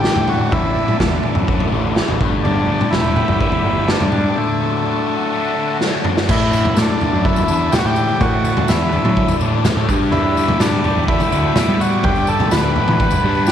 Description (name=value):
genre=psychedelic rock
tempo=125 BPM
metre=4/4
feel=straight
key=unclear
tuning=A4 = 440 Hz
part: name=combo organ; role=melody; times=0.0-13.5 s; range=A3 to B4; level=-20 LUFS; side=equal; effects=slapback echo
part: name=soft string machine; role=sustained chords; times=0.0-13.5 s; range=D5 to D6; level=-27 LUFS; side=right 12 dB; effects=ensemble chorus
part: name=fuzz guitar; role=riff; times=0.0-13.5 s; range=G2 to D4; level=-22 LUFS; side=left 10 dB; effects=distortion, phaser
part: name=fuzz picked electric bass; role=bass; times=0.0-13.5 s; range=E1 to G3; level=-20 LUFS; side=right 1 dB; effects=overdrive
part: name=raw garage drum kit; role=drums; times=0.0-13.5 s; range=crash cymbal, kick drum, snare drum, toms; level=-18 LUFS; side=right 1 dB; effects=none
part: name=tambourine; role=percussion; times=6.3-13.5 s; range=none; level=-36 LUFS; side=left 18 dB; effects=none
room=light reverb, small room ambience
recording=1960s-style stereo with parts hard left and right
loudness=-14 LUFS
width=side -9 dB against mid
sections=0.0-6.3 A section; 6.3-13.5 B section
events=break 4.4-6.3; drum fill 5.8-6.3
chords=0.0 Asus4; 2.2 G; 4.4 D; 6.3 Asus4; 9.9 G